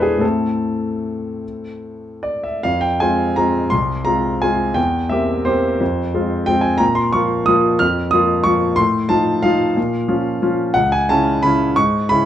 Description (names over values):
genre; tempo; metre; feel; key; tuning
classical, piano waltz; 140-194 BPM; 3/4; rubato; F minor; A4 = 442 Hz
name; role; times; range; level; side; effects
warm grand piano; solo; 0.0-12.3 s; C2 to F6; -15 LUFS; equal; none
room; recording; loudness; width
light reverb; dark, warm production, nothing above 10.3 kHz; -15 LUFS; side -11 dB against mid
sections
0.0-2.7 A section; 2.7-12.3 B section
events
none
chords
0.2 Am; 2.7 Fm; 4.8 C7/E; 5.8 Fm; 6.8 Bbm; 8.8 F7/A; 9.8 Bbm; 10.8 C#m